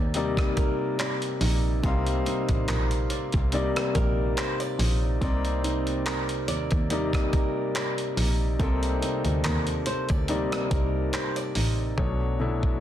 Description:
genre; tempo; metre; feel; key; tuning
contemporary R&B; 71 BPM; 4/4; swing 54% on 16ths; unclear; A4 = 440 Hz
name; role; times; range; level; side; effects
warm grand piano; accompaniment; 0.0-12.8 s; B2 to E#5; -29 LUFS; left 4 dB; none
flamenco guitar; arpeggios; 0.0-12.1 s; C4 to D5; -32 LUFS; right 6 dB; digital delay
rich double bass; bass; 0.0-12.8 s; A1 to Eb2; -27 LUFS; equal; none
dusty soul sampler-style drum kit; drums; 0.1-12.8 s; handclaps, hi-hat, kick drum, rim click; -28 LUFS; equal; none
room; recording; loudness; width
studio reverb; dense, heavily limited modern master; -24 LUFS; side -11 dB against mid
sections
0.0-12.0 A section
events
none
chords
0.0 Cm9; 12.0 Bm9

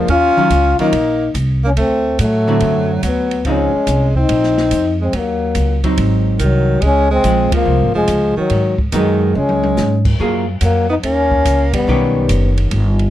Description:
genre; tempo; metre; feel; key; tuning
jazz, small-group swing and bop; 143 BPM; 4/4; swing 67% on 8ths; Db major; A4 = 442 Hz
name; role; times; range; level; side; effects
breathy trombone; melody; 0.0-12.5 s; Gb3 to F4; -16 LUFS; left 3 dB; none
clear tenor saxophone; second line; 0.0-12.5 s; Eb3 to Db4; -21 LUFS; right 4 dB; none
archtop guitar, miked and amplified; accompaniment; 0.0-13.1 s; D3 to G#4; -19 LUFS; right 1 dB; none
upright bass; bass; 0.0-13.1 s; F1 to A2; -17 LUFS; equal; none
open jazz drum kit; drums; 0.1-13.1 s; crash cymbal, hi-hat, kick drum, ride cymbal, snare drum, toms; -24 LUFS; equal; none
room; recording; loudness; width
light reverb; dark, warm production; -12 LUFS; side -13 dB against mid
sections
0.0-10.2 A section; 10.2-13.1 B section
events
band accent 7.5, 11.7; drum fill 9.3-9.8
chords
0.1 Ebm9; 1.8 D9; 3.5 Dbmaj9; 4.3 Bbsus24; 5.1 Ebm7; 6.0 Ab7; 6.8 Dbmaj7; 8.5 Abm7; 9.3 Db5; 10.2 F#maj9; 11.9 D#7alt

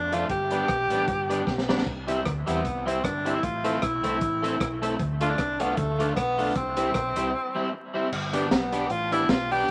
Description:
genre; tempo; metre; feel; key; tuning
ska; 153 BPM; 4/4; swing 56% on 8ths; unclear; A4 = 438 Hz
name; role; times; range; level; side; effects
breathy tenor saxophone; melody; 0.0-9.7 s; A3 to G4; -29 LUFS; equal; none
hollow-body short-scale fingered electric bass; bass; 0.0-9.7 s; F1 to E2; -36 LUFS; equal; none
electric guitar at the edge of break-up; accompaniment; 0.1-9.7 s; F3 to G4; -34 LUFS; equal; dub echo
tonewheel organ; stabs; 0.1-9.6 s; D4 to F5; -34 LUFS; equal; chorus vibrato, slow rotary speaker
crunchy breakbeat drum kit; drums; 0.1-9.7 s; crash cymbal, hi-hat, kick drum, rim click, snare drum, splash cymbal; -32 LUFS; equal; none
room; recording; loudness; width
moderate studio reverb, RT60 0.6 s; vinyl crackle; -26 LUFS; mono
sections
0.0-8.1 A section; 8.1-9.7 B section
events
drum fill 1.5-1.9; break 7.3-8.1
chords
0.3 G; 1.9 C; 3.4 Am; 5.0 Dm; 6.6 C; 8.1 G

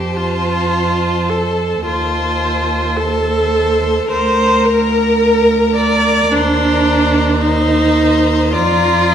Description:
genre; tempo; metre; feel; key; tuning
classical, slow romantic movement for string quartet; 54 BPM; 4/4; rubato; Bb major; A4 = 438 Hz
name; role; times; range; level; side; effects
dark violin; melody; 0.0-9.1 s; A5 to Bb5; -23 LUFS; left 10 dB; none
clear violin; second line; 0.0-9.1 s; Bb4 to D5; -22 LUFS; left 4 dB; none
rich viola; accompaniment; 0.0-9.1 s; D4 to D5; -14 LUFS; right 2 dB; none
rich cello; bass; 0.0-9.1 s; D2 to F2; -18 LUFS; right 2 dB; none
room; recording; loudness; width
wet recital hall reverb, RT60 1.3 s; recorded in a church or concert hall; -12 LUFS; side -8 dB against mid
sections
0.0-9.1 A section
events
none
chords
0.0 F; 1.9 F7/Eb; 4.1 Bb/D; 6.3 Cm7/Eb; 8.5 Bb/F

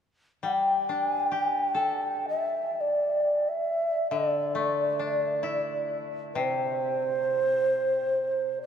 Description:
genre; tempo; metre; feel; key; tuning
japanese traditional, Japanese chamber music; free time; none; none; D suspended pentatonic; A4 = 440 Hz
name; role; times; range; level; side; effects
breathy mellow shakuhachi; melody; 0.4-8.7 s; C5 to G5; -26 LUFS; right 1 dB; none
koto; accompaniment; 0.4-8.7 s; C3 to A4; -32 LUFS; left 4 dB; none
room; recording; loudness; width
wet cathedral reverb, RT60 5.7 s; minimal, uncompressed stereo recording; -25 LUFS; side -8 dB against mid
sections
0.0-8.7 A section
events
none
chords
none

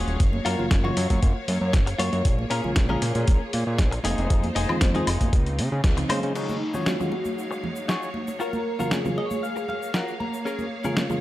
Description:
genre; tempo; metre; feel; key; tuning
nu-disco, nu disco; 117 BPM; 4/4; straight; Eb dorian; A4 = 440 Hz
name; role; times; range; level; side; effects
clear studio string section; sustained chords; 0.0-11.2 s; Gb3 to F5; -34 LUFS; equal; sidechain pumping
direct-recorded clean electric guitar; riff; 0.0-11.1 s; Db4 to Bb5; -31 LUFS; left 3 dB; lush chorus, low-pass filter, dub echo
fat analog bass; bass; 0.0-6.3 s; Eb1 to Db3; -26 LUFS; equal; tube saturation
dusty soul sampler-style drum kit; drums; 0.1-11.1 s; crash cymbal, hi-hat, snare drum, woodblock; -29 LUFS; equal; none
electronic kick drum; drums; 0.2-5.9 s; none; -20 LUFS; equal; none
congas and tube shaker; percussion; 0.3-11.2 s; none; -32 LUFS; right 2 dB; none
reed electric piano; accompaniment; 0.6-11.2 s; Db3 to Ab4; -30 LUFS; equal; low-pass filter
wide unison lead; melody; 6.4-10.2 s; Eb4 to Bb4; -32 LUFS; equal; dub echo
room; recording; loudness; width
light reverb, digital ambience; none; -22 LUFS; side -15 dB against mid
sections
0.0-6.4 A section; 6.4-11.2 B section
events
band accent 5.8; filter sweep on clean electric guitar 6.4-11.2; filter sweep on reed electric piano 6.4-11.2; clean electric guitar fill 8.9-10.5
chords
0.2 Gbmaj7; 2.3 Bbm7; 4.0 Fm7; 5.3 Dbmaj9; 6.4 Ebm11; 8.4 Gbmaj7; 10.5 Bbm7

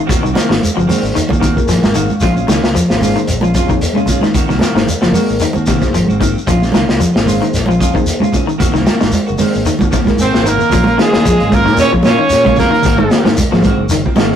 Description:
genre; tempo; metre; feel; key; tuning
afrobeat; 113 BPM; 4/4; swing 54% on 16ths; Bb minor; A4 = 442 Hz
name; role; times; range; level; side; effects
electric guitar at the edge of break-up; arpeggios; 0.0-14.3 s; C3 to F3; -18 LUFS; left 2 dB; none
semi-hollow electric guitar; stabs; 0.1-14.3 s; Eb3 to Gb4; -21 LUFS; right 2 dB; none
fingered electric bass; bass; 0.1-14.4 s; Gb1 to Bb2; -19 LUFS; equal; none
crunchy breakbeat drum kit; drums; 0.1-14.4 s; hi-hat, kick drum, snare drum; -16 LUFS; left 1 dB; none
shekere; percussion; 0.1-14.3 s; none; -23 LUFS; left 1 dB; none
congas; percussion; 0.4-14.3 s; none; -18 LUFS; right 3 dB; none
mellow reed electric piano; accompaniment; 0.6-14.4 s; Bb3 to Ab5; -21 LUFS; left 1 dB; fast tremolo
bright trumpet; melody; 10.2-13.3 s; Ab4 to Db5; -15 LUFS; right 2 dB; none
raspy alto saxophone; second line; 10.2-13.3 s; Ab3 to Db4; -16 LUFS; right 1 dB; none
room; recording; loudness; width
light reverb; rough rehearsal-room recording, warm saturation; -10 LUFS; side -9 dB against mid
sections
0.0-10.7 A section; 10.7-14.4 B section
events
reed electric piano fill 1.4-2.2, 9.9-10.7; drum fill 10.1-10.7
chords
0.1 Ab9; 2.2 Bbm7; 4.3 Ab9; 6.5 Bbm7; 8.6 Ab9; 10.7 Bbm7; 12.8 Ab9

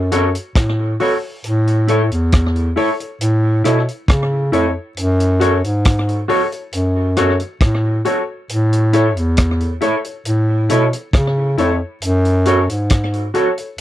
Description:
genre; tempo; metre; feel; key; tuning
roots reggae; 68 BPM; 4/4; straight; unclear; A4 = 438 Hz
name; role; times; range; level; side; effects
mellow bass clarinet; bass; 0.0-13.3 s; E2 to C#3; -16 LUFS; equal; none
mellow electric guitar; accompaniment; 0.1-13.5 s; E4 to C#5; -22 LUFS; right 5 dB; lush chorus, tape echo
warm baby grand piano; stabs; 0.1-13.7 s; E4 to C#5; -19 LUFS; left 6 dB; none
vintage drum kit; drums; 0.1-13.8 s; hi-hat, kick drum, rim click; -18 LUFS; equal; slapback echo
room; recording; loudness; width
little or no reverb; dry, close 1970s-style studio recording; -14 LUFS; side -13 dB against mid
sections
0.0-13.8 A section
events
none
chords
0.0 F#m; 1.4 A; 5.0 F#m; 8.5 A; 12.0 F#m

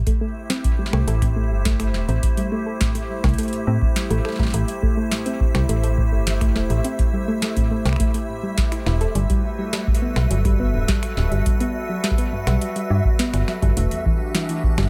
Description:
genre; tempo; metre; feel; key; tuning
IDM; 104 BPM; 4/4; straight; A dorian; A4 = 440 Hz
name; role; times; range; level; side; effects
icy glass pad; sustained chords; 0.2-14.9 s; E3 to C5; -31 LUFS; equal; chorus, built-in reverb
metallic FM bass; bass; 0.0-14.9 s; D1 to A2; -23 LUFS; equal; none
flickering grainy texture; texture; 0.2-14.9 s; E5; -37 LUFS; equal; built-in reverb, sidechain pumping
soft round pluck; arpeggios; 0.1-14.9 s; E2 to A4; -29 LUFS; equal; chorus, vintage 12-bit sampler grit, analog delay
booming analog drum machine; drums; 0.1-14.9 s; finger snaps, hi-hat, snare drum; -31 LUFS; equal; analog delay
electronic kick drum; drums; 0.1-14.7 s; none; -24 LUFS; equal; none
room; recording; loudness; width
digital ambience; echo-heavy mix; -21 LUFS; mono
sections
0.0-14.9 A section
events
none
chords
0.0 Am7; 9.2 Gmaj9

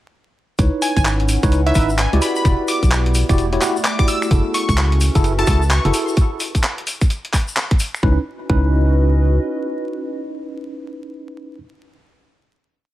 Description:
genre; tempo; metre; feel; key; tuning
UK garage, two-step garage; 129 BPM; 4/4; swing 62% on 16ths; C# minor; A4 = 440 Hz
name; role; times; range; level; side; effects
tine electric piano; stabs; 0.6-11.6 s; C#4 to F#5; -22 LUFS; equal; overdrive, fast stereo tremolo, digital delay
organ-like FM bass; bass; 0.6-9.4 s; E1 to C#2; -17 LUFS; equal; none
breakbeat sampler-style drum kit; drums; 0.6-8.0 s; finger snaps, handclaps, hi-hat; -23 LUFS; equal; none
electronic kick drum; drums; 0.6-8.7 s; none; -16 LUFS; equal; none
tube shaker; percussion; 0.6-8.0 s; none; -31 LUFS; left 3 dB; none
warbly tape-like pad; texture; 0.6-11.3 s; A3 to F#5; -28 LUFS; right 1 dB; chorus, built-in reverb, sidechain pumping
glassy wavetable pluck; melody; 0.8-5.9 s; E5 to E6; -24 LUFS; equal; chorus, digital delay
room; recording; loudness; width
digital ambience; vinyl crackle; -15 LUFS; side -15 dB against mid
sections
0.6-8.0 drop; 8.0-11.8 final chord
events
drop 0.6-8.0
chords
0.6 C#m9; 2.2 Em9; 4.3 F#m9; 6.2 N.C.; 8.0 C#m9

